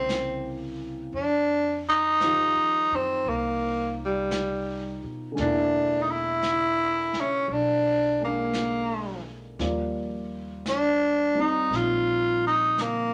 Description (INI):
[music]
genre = jazz ballad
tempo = 57 BPM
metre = 4/4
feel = swing 69% on 8ths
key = unclear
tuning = A4 = 440 Hz
[part]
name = growling tenor saxophone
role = melody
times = 0.0-13.1 s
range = G3 to F4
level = -26 LUFS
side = equal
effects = none
[part]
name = dark grand piano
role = accompaniment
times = 0.0-13.1 s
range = B2 to D5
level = -36 LUFS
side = equal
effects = none
[part]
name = upright bass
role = bass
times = 0.0-13.1 s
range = Bb1 to Cb3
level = -40 LUFS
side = equal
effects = none
[part]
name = vintage brush drum kit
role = drums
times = 0.1-13.1 s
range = brushed snare drum, hi-hat, snare drum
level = -41 LUFS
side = equal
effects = none
[sound]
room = wet studio reverb, RT60 0.8 s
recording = none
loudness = -25 LUFS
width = mono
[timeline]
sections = 0.0-13.1 A section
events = none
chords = 0.0 C7b9; 1.1 Fsus2; 5.4 E7#11; 9.6 Ebmaj9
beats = 0.07 | 1.13 2.19 3.25 4.30 | 5.36 6.41 7.47 8.53 | 9.58 10.64 11.70 12.76